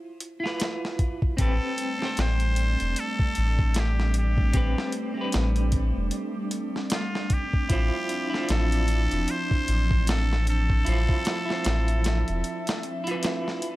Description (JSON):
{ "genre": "trip hop", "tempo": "76 BPM", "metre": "4/4", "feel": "swing 59% on 16ths", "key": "A minor", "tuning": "A4 = 445 Hz", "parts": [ { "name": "semi-hollow electric guitar", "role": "accompaniment", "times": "0.0-13.8 s", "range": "C4 to C5", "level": "-33 LUFS", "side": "right 1 dB", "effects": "tremolo" }, { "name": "dusty soul sampler-style drum kit", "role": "drums", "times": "0.2-13.8 s", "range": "hi-hat, kick drum, snare drum", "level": "-27 LUFS", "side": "equal", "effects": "none" }, { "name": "trumpet with straight mute", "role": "melody", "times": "1.4-12.8 s", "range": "F4 to C5", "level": "-32 LUFS", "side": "equal", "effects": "tape echo" }, { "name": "warbly tape-like pad", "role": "sustained chords", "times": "1.8-13.8 s", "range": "F3 to E5", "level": "-33 LUFS", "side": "right 1 dB", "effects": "chorus, built-in reverb" }, { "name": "soft dub sub bass", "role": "bass", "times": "1.4-12.4 s", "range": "E1 to A1", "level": "-24 LUFS", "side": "equal", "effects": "none" }, { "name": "wind-like tuned noise texture", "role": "texture", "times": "2.3-13.8 s", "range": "D4", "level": "-39 LUFS", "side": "right 4 dB", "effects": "built-in reverb" } ], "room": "little or no reverb", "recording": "none", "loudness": "-23 LUFS", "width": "side -17 dB against mid", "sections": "0.0-13.8 A section", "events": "break 12.4-13.8", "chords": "0.0 Fmaj7(no3)/E; 1.4 Am9; 7.7 Dm7" }